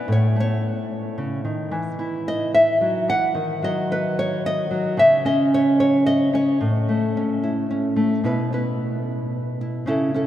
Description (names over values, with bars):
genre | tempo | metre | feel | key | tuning
folk, solo fingerstyle acoustic guitar | 111 BPM | 3/4 | straight | B mixolydian | A4 = 440 Hz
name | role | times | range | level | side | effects
nylon-string guitar | solo | 0.0-10.3 s | A2 to F#5 | -19 LUFS | equal | none
room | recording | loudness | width
wet cathedral reverb, RT60 6.3 s | in a vast, echoing space | -19 LUFS | side -12 dB against mid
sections
0.0-8.2 A section; 8.2-10.3 B section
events
none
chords
0.1 A; 1.7 Esus2; 3.4 B/D#; 5.0 N.C.; 6.6 A; 8.2 Bsus4